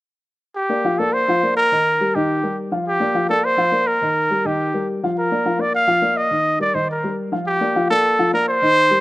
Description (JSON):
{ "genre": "latin", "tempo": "208 BPM", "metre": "4/4", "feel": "straight", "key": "G minor", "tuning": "A4 = 439 Hz", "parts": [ { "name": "mellow trumpet", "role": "melody", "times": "0.6-9.0 s", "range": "G4 to F5", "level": "-17 LUFS", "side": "equal", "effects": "none" }, { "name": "dark grand piano", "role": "accompaniment", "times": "0.7-9.0 s", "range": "Eb3 to F5", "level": "-21 LUFS", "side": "left 1 dB", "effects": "none" } ], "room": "little or no reverb", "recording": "recorded outdoors, with no room sound", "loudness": "-16 LUFS", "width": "side -18 dB against mid", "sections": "0.6-9.0 A section", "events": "none", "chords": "0.6 Gm7; 1.7 Ebadd9; 2.9 Gm7; 4.0 Ebadd9; 5.2 Bb/F; 6.3 Ebadd9; 7.5 Gm7", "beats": "| 0.56 0.84 1.13 1.42 | 1.71 2.00 2.28 2.57 | 2.86 3.15 3.43 3.72 | 4.01 4.30 4.58 4.87 | 5.16 5.45 5.74 6.03 | 6.31 6.60 6.89 7.18 | 7.47 7.75 8.04 8.33 | 8.62 8.91" }